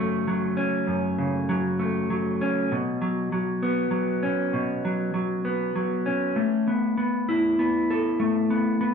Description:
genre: rock.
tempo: 99 BPM.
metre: 3/4.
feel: straight.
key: unclear.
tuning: A4 = 440 Hz.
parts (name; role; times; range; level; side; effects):
mellow electric guitar; solo; 0.0-8.9 s; F#2 to A4; -22 LUFS; equal; none.
room: wet large studio reverb, RT60 1.0 s.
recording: band playing live in one room, nothing above 10.7 kHz.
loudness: -23 LUFS.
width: side -6 dB against mid.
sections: 0.0-8.9 A section.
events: none.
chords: 0.0 F#m; 2.7 Bsus2; 6.4 Asus2.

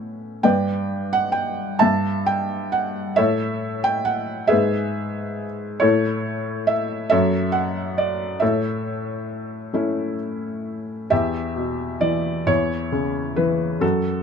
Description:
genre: classical, lyrical solo piano.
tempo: 45 BPM (dotted quarters).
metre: 6/8.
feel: rubato.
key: E dorian.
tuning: A4 = 441 Hz.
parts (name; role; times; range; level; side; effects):
felt-muted upright piano; solo; 0.0-14.2 s; E2 to A5; -20 LUFS; equal; none.
room: light reverb.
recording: close, detailed microphones.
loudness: -20 LUFS.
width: side -6 dB against mid.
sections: 0.0-11.1 A section; 11.1-14.2 B section.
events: none.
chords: 0.4 G; 1.8 Em/G; 3.2 A; 4.5 E/G#; 5.8 A; 7.1 F#m; 8.4 A; 11.1 Em; 12.5 C#m7/E.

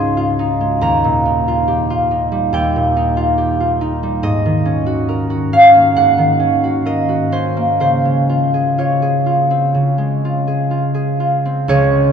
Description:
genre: classical, solo harp piece.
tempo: 61-73 BPM.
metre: 4/4.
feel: rubato.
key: Db lydian.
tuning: A4 = 442 Hz.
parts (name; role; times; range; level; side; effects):
concert harp; solo; 0.0-12.1 s; Db2 to C6; -13 LUFS; equal; none.
room: wet cathedral reverb, RT60 6.0 s.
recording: dark, warm production.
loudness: -13 LUFS.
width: side -7 dB against mid.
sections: 0.0-11.7 A section.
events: none.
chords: 0.0 Dbmaj9; 0.8 Ebadd9; 4.2 Ab9sus4; 7.8 Dbmaj7.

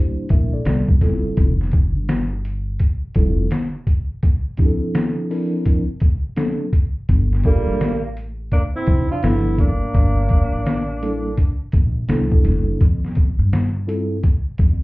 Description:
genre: hip hop, jazz-hop.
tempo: 84 BPM.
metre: 4/4.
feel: swing 64% on 16ths.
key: G dorian.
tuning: A4 = 438 Hz.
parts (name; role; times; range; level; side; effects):
mellow tine electric piano; accompaniment; 0.0-14.2 s; F3 to E5; -24 LUFS; equal; medium stereo tremolo.
upright bass; bass; 0.3-14.8 s; F1 to G2; -21 LUFS; equal; none.
trip hop sampler-style drum kit; drums; 0.3-14.8 s; hi-hat, kick drum, snare drum; -18 LUFS; equal; none.
breathy trombone; second line; 7.4-11.7 s; G3 to D4; -27 LUFS; right 1 dB; none.
breathy tenor saxophone; melody; 7.5-11.7 s; Bb3 to F4; -25 LUFS; right 2 dB; none.
room: little or no reverb.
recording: heard muffled through a wall, club reverb, EQ.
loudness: -16 LUFS.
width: side -21 dB against mid.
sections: 0.0-14.8 A section.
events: none.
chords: 0.0 Gm69; 0.7 C6; 1.4 Fmaj9; 4.2 Bbmaj9#11; 6.4 D7b13; 7.1 Gm9; 9.2 G13; 9.9 Gm69; 12.1 C13; 12.8 Fmaj9.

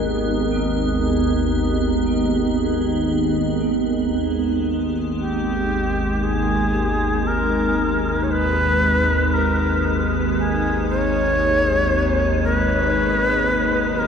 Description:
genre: dark ambient drone.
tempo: 58 BPM.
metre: 4/4.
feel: straight.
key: G# minor.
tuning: A4 = 440 Hz.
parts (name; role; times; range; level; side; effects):
gamelan-type bronze metallophone; arpeggios; 0.0-3.6 s; A#4; -37 LUFS; equal; none.
organ-like drone; drone; 0.0-14.1 s; G#1 to D#2; -20 LUFS; equal; ensemble chorus, built-in reverb.
icy glass pad; texture; 0.0-14.1 s; G#3 to B3; -26 LUFS; right 3 dB; chorus, built-in reverb.
bright chamber cello section; sustained chords; 4.2-14.1 s; B2 to D#4; -32 LUFS; left 3 dB; none.
bright reedy shakuhachi; melody; 5.2-14.1 s; G4 to C#5; -21 LUFS; equal; diffuse ambient delay.
room: wet huge ambient reverb, RT60 8.7 s.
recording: in a vast, echoing space.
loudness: -17 LUFS.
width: side -7 dB against mid.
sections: 0.0-4.2 A section; 4.2-14.1 B section.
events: fade-in on cello section 4.2-14.1; filter sweep on synth drone 4.2-14.1.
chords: 0.0 G#m.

